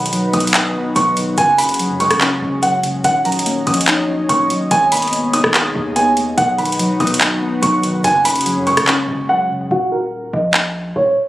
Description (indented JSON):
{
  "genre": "hip hop, trap",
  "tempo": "144 BPM",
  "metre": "4/4",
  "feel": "half-time",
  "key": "Eb minor",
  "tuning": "A4 = 439 Hz",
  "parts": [
    { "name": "dark baby grand piano", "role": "melody", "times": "0.0-11.1 s", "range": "Gb4 to D#6", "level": "-16 LUFS", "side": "right 1 dB", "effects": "low-pass filter, ping-pong delay" },
    { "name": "warbly lo-fi synth keys", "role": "accompaniment", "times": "0.0-9.7 s", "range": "Gb2 to Ab4", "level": "-21 LUFS", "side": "left 1 dB", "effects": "chorus, low-pass filter" },
    { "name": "warm analog pad", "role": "sustained chords", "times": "0.0-9.7 s", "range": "Cb3 to F#5", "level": "-24 LUFS", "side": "equal", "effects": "chorus" },
    { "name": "hard-hitting 808-style bass", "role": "bass", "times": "0.0-11.2 s", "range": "Eb1 to Gb2", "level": "-26 LUFS", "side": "equal", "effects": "none" },
    { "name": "trap drum kit", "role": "drums", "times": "0.1-10.6 s", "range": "handclaps, hi-hat, rim click", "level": "-18 LUFS", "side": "equal", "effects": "none" }
  ],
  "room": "light reverb, digital ambience",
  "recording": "recorded on a phone in the room, studio ambience",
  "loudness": "-13 LUFS",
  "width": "side -15 dB against mid",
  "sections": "0.0-9.7 A section; 9.7-11.3 B section",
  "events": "silent gap 9.3-9.7; hi-hats muted 9.7-11.3; filter sweep 9.7-11.3",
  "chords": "0.0 B; 1.4 Gbsus2; 3.0 Ebm7; 4.7 Abmadd9; 6.4 B; 8.0 Gbsus2; 9.7 Eb5",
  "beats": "0.13 0.54 0.96 | 1.38 1.79 2.21 2.63 | 3.04 3.46 3.88 4.29 | 4.71 5.13 5.54 5.96 | 6.38 6.79 7.21 7.63 | 8.04 8.46 8.88 9.29 | 9.71 10.13 10.54 10.96"
}